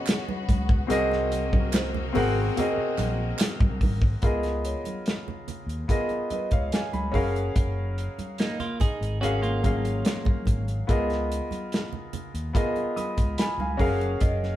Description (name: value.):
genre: lush 1970s-style soul.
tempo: 72 BPM.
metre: 4/4.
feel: straight.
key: unclear.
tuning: A4 = 440 Hz.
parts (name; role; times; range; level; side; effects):
warm concert grand piano; accompaniment; 0.0-14.6 s; F#3 to D#6; -28 LUFS; left 1 dB; none.
rich studio string section; sustained chords; 0.0-4.2 s; B#2 to F#4; -36 LUFS; left 2 dB; none.
warm soul drum kit; drums; 0.1-14.5 s; hi-hat, kick drum, snare drum; -25 LUFS; equal; none.
congas; percussion; 0.1-14.6 s; none; -36 LUFS; right 3 dB; none.
group handclap; percussion; 0.1-3.6 s; none; -37 LUFS; right 4 dB; none.
fretless electric bass; bass; 0.5-14.6 s; F#1 to D#2; -29 LUFS; equal; none.
celesta; texture; 1.7-6.3, 14.2-14.6 s; B#4 to D#5; -39 LUFS; right 4 dB; none.
clean electric guitar; riff; 8.4-10.6 s; A#3 to G#4; -31 LUFS; right 2 dB; none.
room: moderate stone room reverb, RT60 0.9 s.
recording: band playing live in one room.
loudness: -23 LUFS.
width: side -13 dB against mid.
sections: 0.0-4.2 A section; 4.2-14.6 B section.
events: none.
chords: 0.0 C#7sus4; 0.9 G#7; 4.2 C#13; 7.1 F#maj9; 10.9 C#13; 13.8 F#maj9.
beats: 0.07 | 0.91 1.74 2.57 3.40 | 4.23 5.07 5.90 6.73 | 7.56 8.40 9.23 10.06 | 10.89 11.72 12.55 13.39 | 14.22.